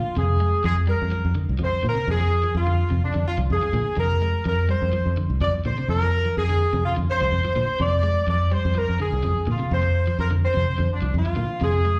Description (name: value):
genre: afrobeat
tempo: 126 BPM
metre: 4/4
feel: swing 54% on 16ths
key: F dorian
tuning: A4 = 440 Hz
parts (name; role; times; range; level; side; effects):
- warm horn section; melody; 0.0-12.0 s; D4 to D5; -27 LUFS; equal; slapback echo
- electric guitar at the edge of break-up; arpeggios; 0.0-12.0 s; C3 to Ab3; -32 LUFS; equal; slapback echo
- fingered electric bass; bass; 0.0-12.0 s; C2 to Bb2; -25 LUFS; equal; none
room: small room ambience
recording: live gig heard through the venue's PA, club reverb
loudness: -22 LUFS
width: mono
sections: 0.2-12.0 A section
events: none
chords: 0.2 Fm6